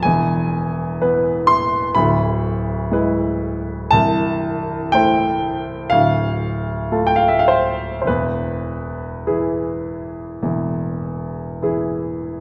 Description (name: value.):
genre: classical, romantic nocturne for solo piano.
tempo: 50-64 BPM.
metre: 4/4.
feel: rubato.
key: unclear.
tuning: A4 = 440 Hz.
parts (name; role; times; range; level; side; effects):
clear grand piano; solo; 0.0-12.4 s; C1 to C6; -20 LUFS; equal; none.
room: moderate scoring stage reverb, RT60 2.0 s.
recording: none.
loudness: -19 LUFS.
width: mono.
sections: 0.0-12.4 A section.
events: none.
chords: 0.0 E; 2.0 E7/D; 3.9 Am/C; 5.9 Dm; 8.1 E.